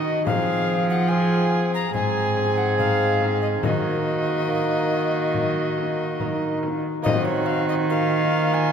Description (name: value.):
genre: classical, renaissance-style consort dance.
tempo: 71 BPM.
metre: 4/4.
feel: straight.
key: Eb dorian.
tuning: A4 = 440 Hz.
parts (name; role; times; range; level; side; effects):
bright alto recorder; melody; 0.0-8.7 s; Db5 to Bb5; -26 LUFS; left 3 dB; none.
warm viola; second line; 0.0-8.7 s; F4 to Ab4; -27 LUFS; right 2 dB; none.
lute; accompaniment; 0.0-8.7 s; Ab2 to Gb4; -30 LUFS; right 3 dB; none.
warm bassoon; accompaniment; 0.0-8.7 s; Bb3 to Eb4; -28 LUFS; left 3 dB; none.
rich cello; bass; 0.0-8.7 s; Ab2 to F3; -24 LUFS; right 2 dB; none.
frame drum; percussion; 0.3-7.4 s; none; -31 LUFS; left 4 dB; none.
room: wet cathedral reverb, RT60 4.2 s.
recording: none.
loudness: -20 LUFS.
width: side -7 dB against mid.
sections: 0.0-7.0 A section; 7.0-8.7 B section.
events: none.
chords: 0.3 Fm; 1.9 Ab; 3.6 Ebm.